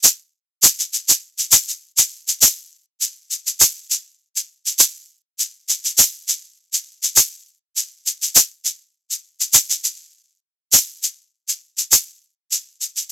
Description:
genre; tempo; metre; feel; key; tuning
west african traditional; 101 BPM; 4/4; swing 53% on 16ths; none; none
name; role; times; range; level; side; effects
egg shaker; percussion; 0.0-13.0 s; none; -11 LUFS; equal; none
room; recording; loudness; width
little or no reverb; dry, close 1970s-style studio recording; -14 LUFS; side -14 dB against mid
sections
0.0-2.4 A section; 2.4-13.1 B section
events
none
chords
none

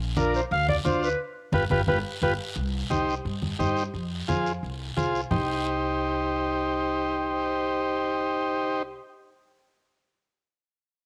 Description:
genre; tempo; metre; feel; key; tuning
latin, cumbia; 175 BPM; 4/4; straight; C minor; A4 = 440 Hz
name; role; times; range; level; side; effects
upright bass; bass; 0.0-8.9 s; G1 to G2; -35 LUFS; equal; none
warm clarinet; melody; 0.2-2.3 s; Bb4 to F5; -30 LUFS; equal; cassette tape
combo organ; accompaniment; 0.2-8.8 s; D4 to C5; -29 LUFS; equal; cassette tape
congas; percussion; 0.2-5.4 s; none; -31 LUFS; equal; none
guiro; percussion; 0.2-5.4 s; none; -42 LUFS; equal; none
room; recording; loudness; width
moderate spring reverb, RT60 1.6 s; home recording on cassette; -27 LUFS; mono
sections
0.0-2.6 A section; 2.6-5.3 B section; 5.3-8.1 C section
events
band accent 1.2-2.6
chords
0.0 Bb; 1.2 G7; 2.6 Cm; 3.9 Fm; 5.3 Cm

